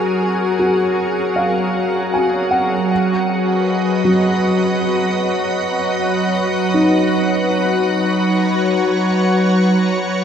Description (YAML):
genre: ambient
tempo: 78 BPM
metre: 3/4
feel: straight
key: unclear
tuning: A4 = 442 Hz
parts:
  - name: soft additive organ-like pad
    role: sustained chords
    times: 0.0-10.2 s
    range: F#3 to G#5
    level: -17 LUFS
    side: equal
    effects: ensemble chorus, built-in reverb
  - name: felt-muted upright piano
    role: arpeggios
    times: 0.0-10.2 s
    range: F#3 to G#5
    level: -21 LUFS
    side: equal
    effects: diffuse ambient delay
  - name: organ-like drone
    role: drone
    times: 0.0-10.2 s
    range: F#3 to F#4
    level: -22 LUFS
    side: left 1 dB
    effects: ensemble chorus, built-in reverb
room: wet huge ambient reverb, RT60 8.3 s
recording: none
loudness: -14 LUFS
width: side -8 dB against mid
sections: 0.0-10.2 A section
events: none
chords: 0.0 F#maj9; 2.9 B/F#